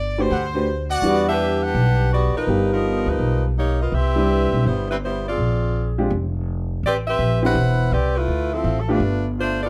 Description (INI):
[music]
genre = jazz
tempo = 166 BPM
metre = 4/4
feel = swing 64% on 8ths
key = E minor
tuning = A4 = 440 Hz
[part]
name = clear saxophone section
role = melody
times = 0.0-9.7 s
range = F3 to F#5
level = -25 LUFS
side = equal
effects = none
[part]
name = upright bass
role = bass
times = 0.0-9.7 s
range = E1 to E2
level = -24 LUFS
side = equal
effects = none
[part]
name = clear upright piano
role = accompaniment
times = 0.2-9.0 s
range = G3 to F#5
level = -26 LUFS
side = equal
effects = none
[part]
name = bright trumpet section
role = stabs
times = 0.3-1.4 s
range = F#4 to F#5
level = -26 LUFS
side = equal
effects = none
[sound]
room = moderate club reverb, RT60 0.8 s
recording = dark, warm production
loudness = -21 LUFS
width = mono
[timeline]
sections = 0.0-1.0 A section; 1.0-9.7 B section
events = none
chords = 0.0 Gmaj9; 1.0 Em9; 2.5 G7alt; 3.9 Cmaj7; 5.4 A#9; 6.8 Am11; 8.3 Dm11; 9.0 G9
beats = 0.31 0.67 | 1.03 1.40 1.76 2.12 | 2.48 2.84 3.21 3.57 | 3.93 4.29 4.66 5.02 | 5.38 5.74 6.11 6.47 | 6.83 7.20 7.56 7.92 | 8.28 8.65 9.01 9.37